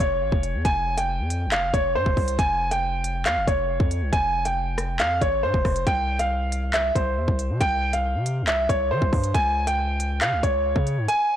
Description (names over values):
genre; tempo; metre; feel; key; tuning
hip hop, drill; 138 BPM; 4/4; half-time; unclear; A4 = 440 Hz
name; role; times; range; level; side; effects
warm concert grand piano; melody; 0.0-11.4 s; C5 to Ab5; -23 LUFS; right 1 dB; tape echo
distorted 808-style bass; bass; 0.0-11.1 s; F1 to E3; -27 LUFS; equal; distortion
drill drum kit; drums; 0.0-11.2 s; handclaps, hi-hat, kick drum, rim click; -25 LUFS; equal; none
impact; sound effects; 0.0-0.6 s; none; barely audible; none; none
room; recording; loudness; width
light reverb, digital ambience; blown-out, overdriven recording, overdrive; -21 LUFS; side -10 dB against mid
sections
0.0-11.4 A section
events
impact 0.0-0.6; kick muted 11.1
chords
0.0 N.C.; 9.3 Db5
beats
0.21 | 0.65 1.08 1.52 1.95 | 2.39 2.82 3.26 3.69 | 4.13 4.56 5.00 5.43 | 5.87 6.30 6.74 7.17 | 7.61 8.04 8.47 8.91 | 9.34 9.78 10.21 10.65 | 11.08